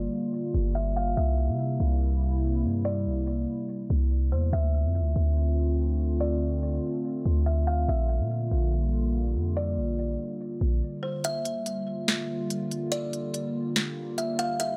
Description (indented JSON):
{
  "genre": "hip hop, atmospheric cloud-rap",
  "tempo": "143 BPM",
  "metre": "4/4",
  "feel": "half-time",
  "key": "G dorian",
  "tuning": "A4 = 441 Hz",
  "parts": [
    { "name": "kalimba", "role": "melody", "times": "0.0-14.8 s", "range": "C5 to F5", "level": "-36 LUFS", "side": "equal", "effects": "tape echo" },
    { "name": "dark analog pad", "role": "sustained chords", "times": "0.0-14.8 s", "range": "C3 to F4", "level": "-34 LUFS", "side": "equal", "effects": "chorus, phaser" },
    { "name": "warm 808-style bass", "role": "bass", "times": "0.0-10.8 s", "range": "G1 to C3", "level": "-28 LUFS", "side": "equal", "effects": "none" },
    { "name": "trap drum kit", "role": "drums", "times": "11.2-14.7 s", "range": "hi-hat, snare drum", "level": "-30 LUFS", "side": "equal", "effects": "none" }
  ],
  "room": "digital ambience",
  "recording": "dry, gritty hardware recording, transformer saturation, low-pass filter",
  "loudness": "-28 LUFS",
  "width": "mono",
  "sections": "0.0-11.2 A section; 11.2-14.8 B section",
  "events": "filter sweep 0.0-11.2; break 10.8-11.2; kick muted 11.2-14.8",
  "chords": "0.0 Gm7; 1.2 C7; 4.5 Dm7; 7.9 Bb6; 11.2 Gm7"
}